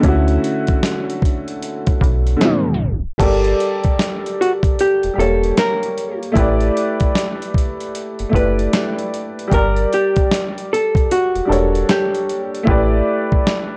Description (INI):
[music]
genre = lo-fi hip hop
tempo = 76 BPM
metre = 4/4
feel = swing 64% on 16ths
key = unclear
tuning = A4 = 439 Hz
[part]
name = bright upright piano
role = accompaniment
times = 0.0-13.8 s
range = D3 to D5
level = -22 LUFS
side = equal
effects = cassette tape, low-pass filter
[part]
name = metallic FM bass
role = bass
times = 0.0-13.0 s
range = E1 to D2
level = -20 LUFS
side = equal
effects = none
[part]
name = dusty soul sampler-style drum kit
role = drums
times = 0.0-13.7 s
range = crash cymbal, hi-hat, kick drum, snare drum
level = -21 LUFS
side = equal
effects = none
[part]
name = archtop guitar, miked and amplified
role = melody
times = 4.4-12.5 s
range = F#4 to B4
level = -21 LUFS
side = equal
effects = low-pass filter
[sound]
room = light reverb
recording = dry, gritty hardware recording, cassette tape, tape stop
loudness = -17 LUFS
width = mono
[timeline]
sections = 0.0-3.2 A section; 3.2-13.8 B section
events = tape stop 2.4-3.2; hi-hats muted 12.7-13.8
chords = 0.0 Dmaj7; 3.2 Gmadd9; 6.4 A9sus4; 9.5 Gmadd9; 12.7 A9sus4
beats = | 0.04 0.83 1.62 2.41 | 3.20 3.99 4.78 5.57 | 6.36 7.14 7.93 8.72 | 9.51 10.30 11.09 11.88 | 12.67 13.46